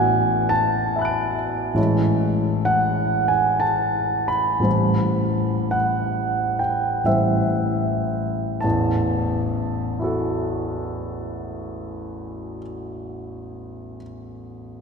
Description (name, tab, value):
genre	classical, impressionist solo piano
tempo	35-72 BPM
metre	3/4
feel	rubato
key	unclear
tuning	A4 = 442 Hz
part	clear concert grand piano	solo	0.0-14.8 s	A1 to D7	-20 LUFS	equal	none
room	wet cathedral reverb, RT60 4.6 s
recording	minimal, uncompressed stereo recording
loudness	-19 LUFS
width	side -5 dB against mid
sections	0.0-8.6 A section; 8.6-12.7 B section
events	slowing down 0.5-8.6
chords	0.0 D69/A; 1.8 Amaj7; 4.7 Cmaj7/A; 8.6 A5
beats	0.09 0.93 | 1.77 2.67 3.62 | 4.65 5.75 7.08 | 8.63 10.00 11.37